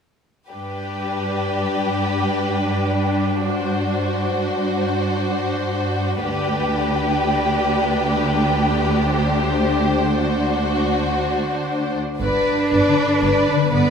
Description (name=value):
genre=classical, slow romantic movement for symphony orchestra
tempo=54-67 BPM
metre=3/4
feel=rubato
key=G major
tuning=A4 = 440 Hz
part: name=rich studio violin section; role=melody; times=0.5-13.9 s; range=B4 to D5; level=-28 LUFS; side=left 1 dB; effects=none
part: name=rich studio violin section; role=second line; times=0.5-13.9 s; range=F#4 to B4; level=-23 LUFS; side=left 2 dB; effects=none
part: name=rich studio viola section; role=accompaniment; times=0.5-13.9 s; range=D4 to B4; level=-25 LUFS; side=left 1 dB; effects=none
part: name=warm studio cello section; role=bass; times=0.5-13.9 s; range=D2 to D4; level=-22 LUFS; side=right 2 dB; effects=none
part: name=concert harp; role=arpeggios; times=12.2-13.9 s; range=G2 to G4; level=-24 LUFS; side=left 8 dB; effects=none
part: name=rich studio double bass section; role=bass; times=12.2-13.8 s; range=G1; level=-24 LUFS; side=right 4 dB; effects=none
room=wet scoring stage reverb, RT60 1.6 s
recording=minimal, uncompressed stereo recording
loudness=-18 LUFS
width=side -6 dB against mid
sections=0.5-12.2 A section; 12.2-13.9 B section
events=none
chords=0.5 G; 6.2 G/D; 12.2 G